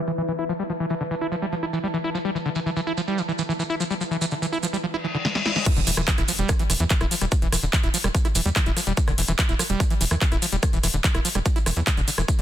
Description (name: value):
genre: psychedelic trance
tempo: 145 BPM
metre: 4/4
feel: straight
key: E phrygian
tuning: A4 = 440 Hz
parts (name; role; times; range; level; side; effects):
- evolving wavetable pad; sustained chords; 0.0-4.8 s; E3; -38 LUFS; left 3 dB; none
- granular cloud pad; texture; 0.0-4.8 s; E4 to A5; -33 LUFS; equal; built-in reverb, sidechain pumping
- overdriven acid bass; riff; 0.1-12.4 s; D3 to E4; -26 LUFS; moving between left 5 dB and right 4 dB; distortion, auto-pan, sidechain pumping, ping-pong delay
- maracas; percussion; 0.1-12.4 s; none; -32 LUFS; right 5 dB; none
- reverse cymbal and impact; sound effects; 5.0-7.3 s; none; -29 LUFS; left 2 dB; none
- big-room dance drum kit; drums; 5.2-12.4 s; crash cymbal, handclaps, hi-hat, rim click, snare drum; -26 LUFS; equal; low-pass filter on snare, low-pass filter on hats, low-pass filter on cymbals
- electronic kick drum; drums; 5.7-12.4 s; none; -22 LUFS; equal; none
- tight sequencer bass; bass; 5.8-12.4 s; D1 to E2; -25 LUFS; equal; none
room: light reverb, digital ambience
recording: dense, heavily limited modern master, low-pass filter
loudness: -21 LUFS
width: side -11 dB against mid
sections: 0.0-5.7 A section; 5.7-12.4 B section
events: filter sweep on acid bass 0.0-5.7; filter sweep 0.0-5.7; reverse cymbal 5.0-5.7; drum fill 5.2-5.7; drop 5.7-12.4; impact 5.7-7.3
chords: 0.0 E5